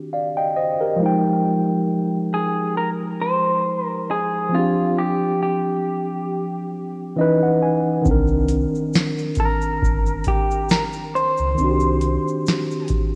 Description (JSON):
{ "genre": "lo-fi hip hop", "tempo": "68 BPM", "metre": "4/4", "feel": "swing 55% on 16ths", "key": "C minor", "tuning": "A4 = 440 Hz", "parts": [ { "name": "tine electric piano", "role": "accompaniment", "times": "0.0-13.2 s", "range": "Eb3 to Ab5", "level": "-23 LUFS", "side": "equal", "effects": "cassette tape, low-pass filter" }, { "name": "electric guitar through a small old amp", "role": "melody", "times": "2.3-12.9 s", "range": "F4 to C5", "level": "-25 LUFS", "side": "equal", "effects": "low-pass filter, tape echo" }, { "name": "sub bass with octave", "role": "bass", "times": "8.1-12.2 s", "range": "G1 to Db2", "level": "-25 LUFS", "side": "equal", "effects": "none" }, { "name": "booming analog drum machine", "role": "drums", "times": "8.1-13.1 s", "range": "hi-hat, kick drum, shaker, snare drum", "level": "-24 LUFS", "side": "equal", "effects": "vintage 12-bit sampler grit" } ], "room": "moderate lush hall reverb, RT60 2.6 s", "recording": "rough home demo mix, cassette tape", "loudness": "-21 LUFS", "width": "mono", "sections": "0.0-13.2 A section", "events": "tine electric piano fill 6.7-8.1", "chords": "0.0 Cm9; 1.0 Fm9; 4.5 G7sus4; 7.2 Dbm9; 8.1 Cm9" }